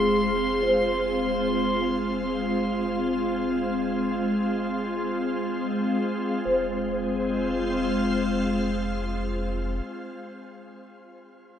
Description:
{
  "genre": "ambient",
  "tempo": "free time",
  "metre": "none",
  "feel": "none",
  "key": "F minor",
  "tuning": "A4 = 439 Hz",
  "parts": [
    { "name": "soft additive organ-like pad", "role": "sustained chords", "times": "0.0-10.1 s", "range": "Ab3 to F5", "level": "-26 LUFS", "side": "equal", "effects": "ensemble chorus, built-in reverb, shimmer reverb" },
    { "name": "large celesta", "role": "arpeggios", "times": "0.0-11.6 s", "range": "Ab4 to C5", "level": "-28 LUFS", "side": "equal", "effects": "ensemble chorus, analog delay, shimmer reverb" },
    { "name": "round analog bass", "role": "bass", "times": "0.0-9.8 s", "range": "F1", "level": "-38 LUFS", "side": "equal", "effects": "none" },
    { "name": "drifting glass-harmonics texture", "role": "texture", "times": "0.0-6.5 s", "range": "C6", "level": "-33 LUFS", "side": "left 2 dB", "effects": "chorus, built-in reverb, shimmer reverb" }
  ],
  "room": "wet plate reverb, RT60 3.2 s",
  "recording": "dreamy mix soaked in reverb",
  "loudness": "-23 LUFS",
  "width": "side -9 dB against mid",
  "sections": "0.0-6.5 A section; 6.5-11.0 B section",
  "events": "none",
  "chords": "0.0 Fm"
}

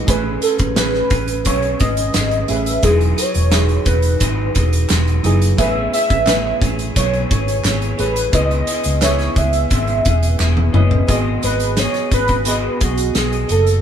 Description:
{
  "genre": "indie pop, bedroom pop",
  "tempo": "87 BPM",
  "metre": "4/4",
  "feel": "straight",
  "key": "unclear",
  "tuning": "A4 = 440 Hz",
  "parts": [
    { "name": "electric guitar through a small old amp", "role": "accompaniment", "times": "0.0-13.8 s", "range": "C#3 to D#5", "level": "-25 LUFS", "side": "left 2 dB", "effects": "vibrato effect" },
    { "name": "warm analog keys", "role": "accompaniment", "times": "0.0-13.8 s", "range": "F#3 to E5", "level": "-24 LUFS", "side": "right 2 dB", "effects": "chorus" },
    { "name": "warm velvety synth lead", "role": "melody", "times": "0.1-13.8 s", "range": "F#4 to E5", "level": "-20 LUFS", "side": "right 1 dB", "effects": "chorus" },
    { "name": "vintage muted fingered electric bass", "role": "bass", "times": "0.1-13.8 s", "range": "E1 to C#2", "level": "-18 LUFS", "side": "equal", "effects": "none" },
    { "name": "loose indie drum kit", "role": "drums", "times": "0.1-13.8 s", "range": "hi-hat, kick drum, snare drum, toms", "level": "-20 LUFS", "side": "equal", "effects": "none" },
    { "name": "group handclap", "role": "percussion", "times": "0.8-10.6 s", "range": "none", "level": "-29 LUFS", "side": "right 2 dB", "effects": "none" }
  ],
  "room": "moderate stone room reverb, RT60 1.3 s",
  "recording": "band playing live in one room",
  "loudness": "-14 LUFS",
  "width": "side -8 dB against mid",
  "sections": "0.0-11.1 A section; 11.1-13.8 B section",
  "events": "drum fill 10.4-11.1",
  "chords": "0.1 Amaj9; 2.8 Emaj9; 5.6 Amaj9; 8.3 C#m9; 11.1 G#m7"
}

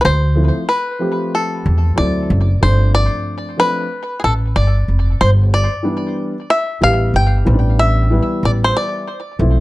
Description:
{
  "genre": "hip hop",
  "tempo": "93 BPM",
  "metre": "4/4",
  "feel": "swing 62% on 16ths",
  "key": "D dorian",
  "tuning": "A4 = 439 Hz",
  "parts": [
    { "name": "bluegrass banjo", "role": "melody", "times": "0.0-9.6 s", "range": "G#4 to G5", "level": "-19 LUFS", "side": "left 1 dB", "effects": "plate reverb, tape echo" },
    { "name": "upright bass", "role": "bass", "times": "0.0-9.6 s", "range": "F1 to E2", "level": "-14 LUFS", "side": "equal", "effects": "none" },
    { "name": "dark baby grand piano", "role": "accompaniment", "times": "0.3-9.6 s", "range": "E3 to G4", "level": "-20 LUFS", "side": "equal", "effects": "none" }
  ],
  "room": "light reverb",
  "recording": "dark, warm production",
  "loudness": "-13 LUFS",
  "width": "side -18 dB against mid",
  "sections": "0.0-9.6 A section",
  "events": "none",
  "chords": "0.0 Dm9; 2.0 D7; 2.6 G9sus4; 5.2 G69; 7.5 A9sus4"
}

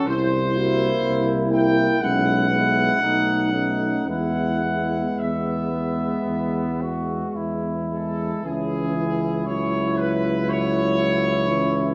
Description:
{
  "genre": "classical, hymn-like piece for brass band",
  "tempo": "54-62 BPM",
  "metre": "4/4",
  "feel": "rubato",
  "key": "E major, C# minor from 8.5 s",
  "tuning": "A4 = 442 Hz",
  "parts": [
    { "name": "clear trumpet section", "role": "melody", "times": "0.0-11.9 s", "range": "G#4 to G5", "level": "-27 LUFS", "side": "equal", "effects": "none" },
    { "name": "warm flugelhorn", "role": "second line", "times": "0.0-11.9 s", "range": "B3 to F#4", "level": "-32 LUFS", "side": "equal", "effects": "none" },
    { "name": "mellow euphonium", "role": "accompaniment", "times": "0.0-11.9 s", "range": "B3 to F#4", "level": "-29 LUFS", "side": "equal", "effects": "none" },
    { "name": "warm trombone", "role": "accompaniment", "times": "0.0-11.9 s", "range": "E3 to Bb3", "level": "-31 LUFS", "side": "equal", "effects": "none" },
    { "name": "warm tuba", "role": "bass", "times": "0.1-11.9 s", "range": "B1 to E2", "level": "-28 LUFS", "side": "equal", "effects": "none" }
  ],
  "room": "wet recital hall reverb, RT60 1.6 s",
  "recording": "none",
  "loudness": "-22 LUFS",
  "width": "mono",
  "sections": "0.0-8.5 A section; 8.5-11.9 B section",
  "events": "none",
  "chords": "0.1 C7; 2.0 E/B; 3.0 B7; 4.1 E; 8.5 C#m"
}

